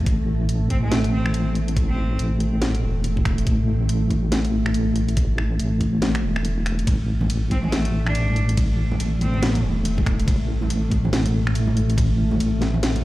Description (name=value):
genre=deep dubstep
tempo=141 BPM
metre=4/4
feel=swing 60% on 16ths, half-time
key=A minor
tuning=A4 = 440 Hz
part: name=deep dark ambient pad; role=sustained chords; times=0.0-13.0 s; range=A3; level=-28 LUFS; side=equal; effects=chorus, built-in reverb
part: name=deep soft wobble bass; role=bass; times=0.0-13.0 s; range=E1 to A1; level=-21 LUFS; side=equal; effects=chorus
part: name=electronic kick drum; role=drums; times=0.1-12.1 s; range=none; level=-21 LUFS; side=equal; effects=none
part: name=garage drum kit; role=drums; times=0.1-13.0 s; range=finger snaps, hi-hat, ride cymbal, snare drum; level=-29 LUFS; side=equal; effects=none
part: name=rich cello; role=melody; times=0.7-2.2, 7.5-9.6 s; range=A3 to D4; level=-31 LUFS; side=equal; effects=dub echo
part: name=congas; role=percussion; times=6.9-13.0 s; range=none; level=-29 LUFS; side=right 1 dB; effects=dub echo
room=little or no reverb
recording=played on a big sound system in a bare room, large studio reverb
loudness=-19 LUFS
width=side -17 dB against mid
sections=0.0-13.0 A section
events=break 6.4-6.9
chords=0.0 A5